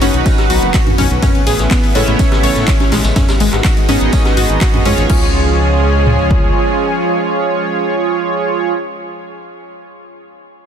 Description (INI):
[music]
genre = progressive house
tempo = 124 BPM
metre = 4/4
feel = straight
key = unclear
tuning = A4 = 440 Hz
[part]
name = lush unison pad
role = sustained chords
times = 0.0-8.7 s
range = C#3 to G#4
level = -20 LUFS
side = equal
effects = chorus, sidechain pumping
[part]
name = analog pluck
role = arpeggios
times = 0.0-5.3 s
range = G#3 to C#5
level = -20 LUFS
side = left 2 dB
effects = chorus, sidechain pumping, digital delay
[part]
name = chorused polysynth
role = stabs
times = 0.0-8.7 s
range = B3 to D#5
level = -18 LUFS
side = right 4 dB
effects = sidechain pumping, digital delay
[part]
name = fat analog bass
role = bass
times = 0.0-6.5 s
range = F#1 to A2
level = -16 LUFS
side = equal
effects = tube saturation, sidechain pumping
[part]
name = house drum kit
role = drums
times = 0.0-5.2 s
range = crash cymbal, handclaps, hi-hat, ride cymbal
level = -23 LUFS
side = left 2 dB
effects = sidechain pumping on hats, sidechain pumping on cymbals
[part]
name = vintage brush drum kit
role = drums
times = 0.0-5.1 s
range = hi-hat, snare drum, tambourine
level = -28 LUFS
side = equal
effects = none
[part]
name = house drum kit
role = drums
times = 0.3-6.4 s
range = kick drum, toms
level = -14 LUFS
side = equal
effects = none
[part]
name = punchy analog drum machine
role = percussion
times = 0.4-5.0 s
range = congas, rim click, toms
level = -21 LUFS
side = right 2 dB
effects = sidechain pumping on toms, sidechain pumping on snare, sidechain pumping on perc
[sound]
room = digital ambience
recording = dense, heavily limited modern master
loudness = -11 LUFS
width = side -8 dB against mid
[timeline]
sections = 0.0-5.1 A section; 5.1-9.0 B section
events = drop 0.0-5.1; band accent 4.6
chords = 0.0 B; 1.2 Aadd9; 3.2 G#m7; 5.1 C#